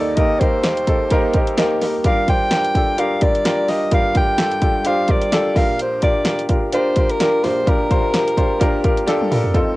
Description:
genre	piano-driven pop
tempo	128 BPM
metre	4/4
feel	swing 56% on 16ths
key	Bb major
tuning	A4 = 440 Hz
part	breathy soprano saxophone	melody	0.0-9.1 s	Bb4 to G5	-20 LUFS	equal	cassette tape
part	clear upright piano	accompaniment	0.0-9.8 s	F1 to C5	-19 LUFS	equal	cassette tape
part	house drum kit	drums	0.2-9.7 s	hi-hat, kick drum, snare drum, toms	-19 LUFS	equal	cassette tape
room	light reverb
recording	home recording on cassette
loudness	-15 LUFS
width	side -19 dB against mid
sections	0.0-9.5 A section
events	drum fill 9.1-9.5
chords	0.0 Eb; 2.0 Gm7; 5.6 Bb6

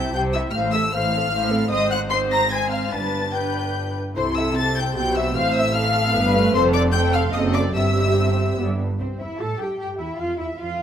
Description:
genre	quick classical-period movement for string orchestra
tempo	151 BPM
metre	3/4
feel	rubato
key	C major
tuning	A4 = 437 Hz
part	warm symphonic violin section	melody	0.0-10.8 s	C5 to C7	-26 LUFS	left 4 dB	none
part	dark studio violin section	second line	0.0-10.8 s	C5 to C6	-25 LUFS	left 2 dB	none
part	dark symphonic viola section	accompaniment	0.0-10.8 s	A3 to E5	-24 LUFS	equal	none
part	rich symphonic cello section	bass	0.0-10.8 s	F2 to A4	-25 LUFS	right 2 dB	none
part	rich symphonic double bass section	bass	0.0-10.8 s	F1 to A2	-28 LUFS	right 2 dB	none
room	moderate scoring stage reverb, RT60 2.2 s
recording	close, detailed microphones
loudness	-19 LUFS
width	side -9 dB against mid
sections	0.0-9.0 A section; 9.0-10.8 A section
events	none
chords	0.0 C; 0.5 F/A; 1.7 Ab69; 2.9 G; 4.2 C; 5.4 F/A; 6.5 F; 7.3 F#dim7; 7.7 C/G; 8.6 G; 9.0 C; 10.2 F5

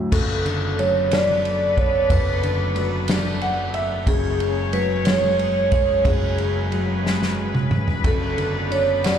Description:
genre	six-eight pop ballad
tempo	60 BPM (dotted quarters)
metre	6/8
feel	straight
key	unclear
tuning	A4 = 439 Hz
part	clear concert grand piano	accompaniment	0.0-9.2 s	F#1 to F#5	-24 LUFS	equal	none
part	vibraphone with medium mallets	melody	0.1-9.2 s	G#4 to D5	-22 LUFS	right 2 dB	slapback echo
part	dark studio string section	sustained chords	0.1-9.2 s	F#3 to C#5	-29 LUFS	left 2 dB	none
part	unplugged drum kit	drums	0.1-9.2 s	crash cymbal, kick drum, ride cymbal, snare drum, toms	-24 LUFS	equal	none
room	light reverb, studio reverb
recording	live gig heard through the venue's PA, club reverb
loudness	-18 LUFS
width	side -8 dB against mid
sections	0.1-9.2 A section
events	grand piano fill 3.1-4.1; drum fill 7.0-8.0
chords	0.1 Bm7/F#; 4.1 C#sus4/F#; 8.0 Bm7/F#

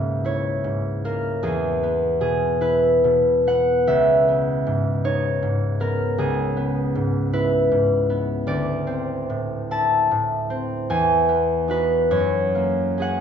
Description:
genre	classical, solo harp piece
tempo	44-53 BPM (dotted quarters)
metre	6/8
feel	rubato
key	C# dorian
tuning	A4 = 439 Hz
part	concert harp	solo	0.0-13.2 s	C#2 to A5	-19 LUFS	equal	none
room	wet recital hall reverb, RT60 1.4 s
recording	recorded in a church or concert hall, nothing above 7.7 kHz, faint mains hum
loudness	-19 LUFS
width	side -8 dB against mid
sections	0.0-13.2 A section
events	none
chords	0.0 C#m6; 1.4 E; 3.9 C#m11; 8.5 D7sus2; 10.9 Emaj9; 12.1 F#9

